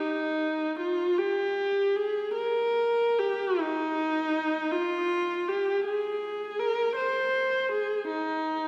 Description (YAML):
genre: classical, free, expressive piece for unaccompanied viola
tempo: 49-57 BPM (dotted quarters)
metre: 6/8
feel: rubato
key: unclear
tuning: A4 = 444 Hz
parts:
  - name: rich viola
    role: solo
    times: 0.0-8.7 s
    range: Eb4 to C5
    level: -28 LUFS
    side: equal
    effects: none
room: wet concert hall reverb, RT60 2.4 s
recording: heard from further back in the room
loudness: -28 LUFS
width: mono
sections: 0.0-8.7 A section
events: none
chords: none